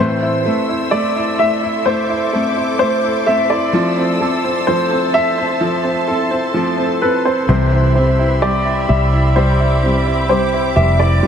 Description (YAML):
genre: pop ballad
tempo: 64 BPM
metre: 4/4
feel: straight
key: A minor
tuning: A4 = 440 Hz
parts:
  - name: clear baby grand piano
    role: melody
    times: 0.0-11.3 s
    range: B4 to E5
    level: -18 LUFS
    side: equal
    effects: analog chorus, diffuse ambient delay
  - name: bright upright piano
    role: accompaniment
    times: 0.0-11.3 s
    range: C3 to A4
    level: -20 LUFS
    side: right 1 dB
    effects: none
  - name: rich studio string section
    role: sustained chords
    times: 0.0-11.3 s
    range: G4 to E6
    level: -24 LUFS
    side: equal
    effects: none
  - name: nylon-string guitar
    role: arpeggios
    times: 0.0-11.3 s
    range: A2 to B4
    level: -22 LUFS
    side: left 1 dB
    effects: diffuse ambient delay
  - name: vintage muted fingered electric bass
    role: bass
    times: 7.5-11.2 s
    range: F1 to C2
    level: -15 LUFS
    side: equal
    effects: none
room: wet huge ambient reverb, RT60 4.9 s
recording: dreamy mix soaked in reverb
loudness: -13 LUFS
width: side -8 dB against mid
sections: 0.0-11.3 A section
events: none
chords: 0.0 Am; 3.7 Fmaj7; 7.5 Cmaj7